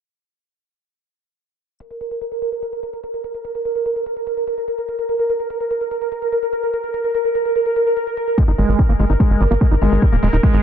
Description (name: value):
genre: psychedelic trance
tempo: 146 BPM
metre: 4/4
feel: straight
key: unclear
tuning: A4 = 439 Hz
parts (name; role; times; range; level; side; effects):
- pulsing gated texture; sustained chords; 1.8-10.6 s; Bb4; -20 LUFS; right 1 dB; chorus, built-in reverb, sidechain pumping
- electronic hi-hat; drums; 1.8-10.6 s; none; -50 LUFS; left 3 dB; overdrive
- screaming distorted acid line; riff; 8.4-10.6 s; G3 to Eb4; -20 LUFS; moving between left 5 dB and right 6 dB; distortion, chorus, auto-pan, sidechain pumping, digital delay
- electronic kick drum; drums; 8.4-10.5 s; none; -15 LUFS; equal; none
- tight sequencer bass; bass; 8.5-10.6 s; Eb1 to Ab1; -16 LUFS; equal; none
room: light reverb, digital ambience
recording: dense, heavily limited modern master, low-pass filter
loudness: -16 LUFS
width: side -9 dB against mid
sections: 1.8-10.6 A section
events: filter sweep 1.8-10.6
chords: 1.8 N.C.; 8.4 Ab5